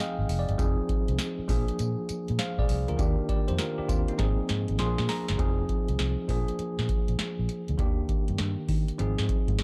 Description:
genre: R&B, new jack swing.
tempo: 100 BPM.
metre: 4/4.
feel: swing 65% on 16ths.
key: unclear.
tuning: A4 = 440 Hz.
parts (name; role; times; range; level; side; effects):
bell-like tine electric piano; accompaniment; 0.0-9.6 s; Eb3 to C6; -34 LUFS; equal; none.
vintage muted fingered electric bass; bass; 0.2-9.6 s; F1 to Eb3; -32 LUFS; equal; none.
booming analog drum machine; drums; 0.3-9.6 s; hi-hat, kick drum, snare drum, tambourine; -31 LUFS; equal; none.
room: digital ambience.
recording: dark, warm production.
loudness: -28 LUFS.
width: mono.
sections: 0.0-5.4 A section; 5.4-9.6 B section.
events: tine electric piano fill 0.0-0.6, 4.5-5.4; drum fill 4.2-5.4.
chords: 0.0 Ab6; 0.6 Fm7; 1.5 Bb7; 3.0 Ebmaj7; 4.2 Ab6; 4.8 Bb7; 5.4 Fm7; 6.3 Bb7; 7.8 Ebmaj7; 9.0 Ab6.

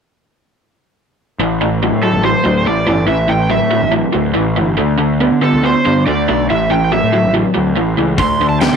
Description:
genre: blues rock power trio and southern rock.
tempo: 141 BPM.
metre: 4/4.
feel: straight.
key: A minor.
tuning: A4 = 440 Hz.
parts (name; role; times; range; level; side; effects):
raw garage guitar; riff; 1.4-8.8 s; A2 to B3; -14 LUFS; equal; overdrive.
fuzz picked electric bass; bass; 1.4-8.8 s; G1 to D3; -19 LUFS; equal; overdrive.
overdriven slide guitar; melody; 2.0-8.8 s; A4 to C6; -17 LUFS; right 3 dB; slapback echo.
huge arena drum kit; drums; 8.2-8.7 s; hi-hat, kick drum, snare drum; -19 LUFS; left 4 dB; none.
room: light reverb, small room ambience.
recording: 1960s-style stereo.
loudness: -12 LUFS.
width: side -6 dB against mid.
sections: 1.4-8.8 A section.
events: none.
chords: 1.4 A5; 4.8 D5; 6.5 A5; 8.2 D5.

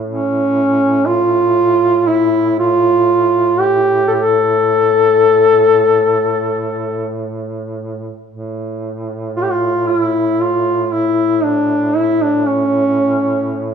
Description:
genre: caucasian folk, Caucasian lament.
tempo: 52-61 BPM.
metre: 4/4.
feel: rubato.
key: unclear.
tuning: A4 = 440 Hz.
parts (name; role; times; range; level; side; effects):
mellow duduk; drone; 0.0-13.7 s; A2; -22 LUFS; right 3 dB; none.
mellow duduk; melody; 0.1-13.7 s; C#4 to A4; -12 LUFS; left 1 dB; none.
room: moderate recital hall reverb, RT60 1.7 s.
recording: minimal, uncompressed stereo recording.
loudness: -12 LUFS.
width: side -7 dB against mid.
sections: 0.0-8.3 A section; 8.3-13.7 B section.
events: none.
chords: none.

